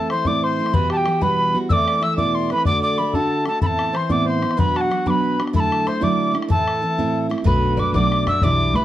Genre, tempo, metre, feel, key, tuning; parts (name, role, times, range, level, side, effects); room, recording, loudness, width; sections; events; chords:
celtic folk, Celtic jig; 125 BPM (dotted quarters); 6/8; straight; A dorian; A4 = 440 Hz
tin whistle; melody; 0.0-8.8 s; F#5 to E6; -21 LUFS; equal
accordion; second line; 0.0-8.8 s; F#4 to E5; -27 LUFS; left 2 dB
picked steel-string acoustic guitar; accompaniment; 0.0-8.8 s; E2 to F#4; -22 LUFS; right 2 dB
bodhran; percussion; 0.1-8.6 s; -23 LUFS; left 2 dB
mandolin; second line; 7.5-8.8 s; B4 to E5; -31 LUFS; right 2 dB
upright bass; bass; 7.5-8.8 s; B1 to F#2; -21 LUFS; left 1 dB
moderate studio reverb, RT60 0.5 s; worn, warbling old tape, cassette tape, warbly pitch drift; -17 LUFS; side -13 dB against mid
0.0-7.5 A section; 7.5-8.8 B section
0.0 Am; 0.7 Emadd9; 1.7 Amadd9/E; 2.7 D; 3.6 Amadd9; 4.6 Bm; 5.5 Dadd9; 6.5 Am; 7.5 Bm7